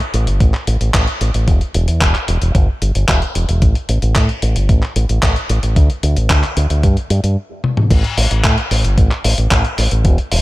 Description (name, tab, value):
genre	italo disco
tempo	112 BPM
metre	4/4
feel	straight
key	unclear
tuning	A4 = 438 Hz
part	dusty soul sampler-style drum kit	drums	0.0-10.4 s	crash cymbal, handclaps, hi-hat, toms	-20 LUFS	left 1 dB	none
part	fingered electric bass with an envelope filter	bass	0.1-10.4 s	E1 to A2	-15 LUFS	equal	none
part	electronic kick drum	drums	0.4-10.2 s	none	-14 LUFS	equal	none
room	little or no reverb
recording	none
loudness	-12 LUFS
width	side -18 dB against mid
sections	0.0-7.9 A section; 7.9-10.4 B section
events	stop 7.4-7.9; drum fill 7.6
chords	none